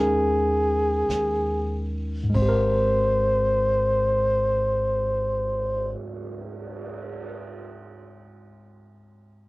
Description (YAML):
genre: jazz ballad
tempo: 46-55 BPM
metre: 4/4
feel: swing 68% on 8ths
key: Ab major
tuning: A4 = 439 Hz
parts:
  - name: trumpet with bucket mute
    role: melody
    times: 0.0-5.9 s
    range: Ab4 to C5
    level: -22 LUFS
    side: equal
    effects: none
  - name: tine electric piano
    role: accompaniment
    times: 0.0-9.5 s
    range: Ab2 to Bb4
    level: -28 LUFS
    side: left 1 dB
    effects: slow stereo tremolo, cassette tape
  - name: upright bass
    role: bass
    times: 0.0-5.9 s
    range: Ab1 to Eb2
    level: -30 LUFS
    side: equal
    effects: none
  - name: jazz brush drum kit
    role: drums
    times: 1.1-7.3 s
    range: cymbal swell, hi-hat, kick drum, ride cymbal, snare drum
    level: -39 LUFS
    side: right 3 dB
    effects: cassette tape
room: light reverb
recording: home recording on cassette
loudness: -21 LUFS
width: side -22 dB against mid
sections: 0.0-2.3 A section; 2.3-7.5 B section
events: slowing down 0.0-2.3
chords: 0.0 Eb7sus4; 2.3 Abmaj9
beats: 1.10 | 2.34 3.64 4.93 6.22